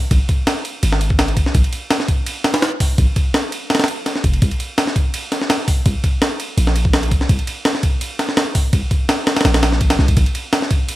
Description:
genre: drum and bass, jungle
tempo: 167 BPM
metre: 4/4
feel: straight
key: unclear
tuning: A4 = 440 Hz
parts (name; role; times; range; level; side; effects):
- warm 808-style bass; bass; 0.1-10.3 s; F1 to C2; -16 LUFS; equal; tube saturation
- breakbeat sampler-style drum kit; drums; 0.1-11.0 s; hi-hat, kick drum, ride cymbal, snare drum; -16 LUFS; equal; none
room: little or no reverb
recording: vinyl crackle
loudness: -15 LUFS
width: side -16 dB against mid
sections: 0.0-11.0 A section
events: none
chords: none

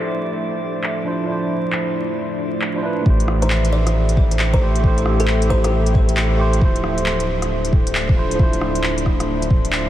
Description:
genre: future garage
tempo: 135 BPM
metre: 4/4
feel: swing 64% on 16ths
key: A minor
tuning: A4 = 438 Hz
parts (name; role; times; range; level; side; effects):
- tine electric piano; accompaniment; 0.0-9.9 s; F3 to C5; -24 LUFS; right 2 dB; wide subtle chorus, sidechain pumping, tape echo
- deep dark ambient pad; sustained chords; 0.0-9.9 s; F3 to E5; -25 LUFS; left 1 dB; chorus, built-in reverb, sidechain pumping
- drifting glass-harmonics texture; texture; 0.0-3.1 s; D4 to D5; -36 LUFS; left 1 dB; chorus, built-in reverb
- organic electronic drum kit; drums; 0.8-9.8 s; handclaps, hi-hat, rim click; -26 LUFS; equal; low-pass filter on hats, low-pass filter on snare, low-pass filter on room
- warm sub bass; bass; 3.1-9.9 s; D1 to A1; -20 LUFS; equal; sidechain pumping
- electronic kick drum; drums; 3.1-9.6 s; none; -16 LUFS; equal; none
- kalimba; melody; 3.4-5.7 s; A4 to D5; -29 LUFS; left 1 dB; diffuse ambient delay
room: moderate huge ambient reverb, RT60 8.5 s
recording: dreamy mix soaked in reverb, vinyl crackle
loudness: -16 LUFS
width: side -12 dB against mid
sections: 0.0-3.1 A section; 3.1-9.9 B section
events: filter sweep on tine electric piano 0.0-3.1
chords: 0.0 Dm9; 3.1 Am7; 6.6 Dm9

